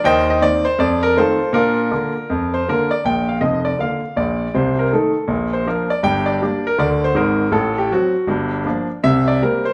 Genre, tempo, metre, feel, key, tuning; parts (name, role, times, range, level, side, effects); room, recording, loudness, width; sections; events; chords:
jazz, stride piano; 160 BPM; 4/4; swing 64% on 8ths; Bb major; A4 = 440 Hz
clear grand piano; solo; 0.0-9.7 s; F1 to G5; -18 LUFS; equal
wet stone room reverb, RT60 1.0 s; band playing live in one room; -18 LUFS; mono
0.0-3.0 A section; 3.0-9.7 A section
0.0 Eb5; 0.8 F7; 1.5 Bb; 4.5 Adim/C; 5.3 Bb; 6.0 Gm; 7.5 F#dim/A; 8.3 Gm7; 9.0 C5